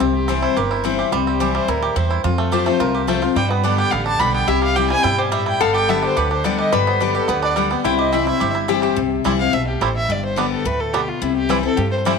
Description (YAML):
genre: bluegrass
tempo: 214 BPM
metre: 4/4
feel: straight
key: C major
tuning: A4 = 444 Hz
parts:
  - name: bluegrass banjo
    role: melody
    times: 0.0-12.1 s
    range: G3 to G4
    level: -22 LUFS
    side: right 8 dB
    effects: none
  - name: picked steel-string acoustic guitar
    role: accompaniment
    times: 0.0-12.2 s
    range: F2 to G4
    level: -21 LUFS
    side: left 10 dB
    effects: none
  - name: upright bass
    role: bass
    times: 0.0-12.2 s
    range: G1 to G2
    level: -24 LUFS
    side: right 3 dB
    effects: none
  - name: dark fiddle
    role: melody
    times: 0.1-12.0 s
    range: E4 to B5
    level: -23 LUFS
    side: equal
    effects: tape echo
  - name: lap resonator guitar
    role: second line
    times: 4.5-9.0 s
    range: E4 to B4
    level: -22 LUFS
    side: left 7 dB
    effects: none
room: moderate echo chamber reverb, RT60 1.6 s, small room ambience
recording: 1960s-style stereo with parts hard left and right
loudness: -16 LUFS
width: side -5 dB against mid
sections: 0.0-9.0 A section; 9.0-12.2 B section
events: none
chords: 0.0 C; 2.2 F; 3.4 G; 4.5 C; 5.6 G; 7.8 C; 10.1 G; 11.2 C